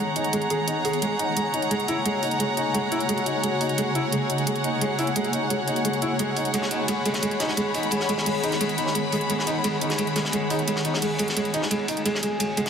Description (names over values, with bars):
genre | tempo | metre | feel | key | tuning
dark technical drum and bass | 174 BPM | 4/4 | straight | G# minor | A4 = 441 Hz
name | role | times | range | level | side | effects
swarming drone | sustained chords | 0.0-12.7 s | C#3 to G#4 | -30 LUFS | equal | built-in reverb
felt-muted upright piano | arpeggios | 0.0-12.6 s | G#3 to G#4 | -27 LUFS | right 1 dB | digital delay
dark studio string section | texture | 0.0-12.7 s | G#4 to B5 | -26 LUFS | left 2 dB | none
electronic hi-hat | drums | 0.2-12.7 s | none | -30 LUFS | right 2 dB | overdrive
crunchy breakbeat drum kit | drums | 6.5-12.7 s | hi-hat, ride cymbal, snare drum | -31 LUFS | left 1 dB | high-pass filter on cymbals, high-pass filter on hats, high-pass filter on snare, high-pass filter on room
room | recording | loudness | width
moderate plate reverb, RT60 1.7 s | heavily compressed radio sound, multiband compression | -22 LUFS | side -7 dB against mid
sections
0.0-12.7 A section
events
filter sweep on synth drone 0.0-12.7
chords
0.0 G#m; 1.0 F#; 6.5 G#m; 12.1 F#